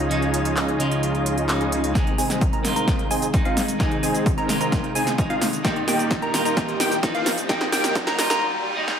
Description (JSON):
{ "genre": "EDM, festival progressive house", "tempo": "130 BPM", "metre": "4/4", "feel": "straight", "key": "Ab major", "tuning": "A4 = 440 Hz", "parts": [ { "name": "clean electric guitar", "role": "accompaniment", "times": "0.0-9.0 s", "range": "Bb2 to F4", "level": "-27 LUFS", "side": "equal", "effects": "spring reverb, sidechain pumping, tape echo" }, { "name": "lush unison pad", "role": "sustained chords", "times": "0.0-8.4 s", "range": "Bb2 to Ab4", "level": "-32 LUFS", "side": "right 2 dB", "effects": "chorus, phaser, sidechain pumping" }, { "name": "big supersaw lead", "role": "riff", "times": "0.0-8.4 s", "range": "Bb3 to Eb5", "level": "-26 LUFS", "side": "equal", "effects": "sidechain pumping, low-pass filter, tape echo" }, { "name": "fat analog bass", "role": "bass", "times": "0.0-1.9 s", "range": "Db2", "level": "-28 LUFS", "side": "equal", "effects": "sidechain pumping" }, { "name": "big-room dance drum kit", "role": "drums", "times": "0.1-9.0 s", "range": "cabasa, handclaps, hi-hat, snare drum", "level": "-26 LUFS", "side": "equal", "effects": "overdrive" }, { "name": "swell and riser", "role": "sound effects", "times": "1.2-9.0 s", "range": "none", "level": "-34 LUFS", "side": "equal", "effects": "none" }, { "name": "plucky unison lead", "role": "arpeggios", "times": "2.0-8.4 s", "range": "F5 to Bb5", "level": "-27 LUFS", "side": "equal", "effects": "sidechain pumping, tape echo" }, { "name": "electronic kick drum", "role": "drums", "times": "2.0-8.0 s", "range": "none", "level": "-24 LUFS", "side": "equal", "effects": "overdrive" } ], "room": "moderate digital room reverb, RT60 1.2 s, digital ambience", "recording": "high-pass filter", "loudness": "-19 LUFS", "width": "side -8 dB against mid", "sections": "0.0-2.0 A section; 2.0-9.0 B section", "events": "swell 1.2-2.0; build-up 2.0-9.0; drum fill 2.0-8.4; filter sweep on supersaw synth 2.0-9.0; filter sweep on digital synth lead 2.0-9.0; filter sweep 2.0-9.0; riser 3.8-9.0; break 8.4-9.0", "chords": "0.0 Dbadd9; 2.0 Ab; 5.6 Eb" }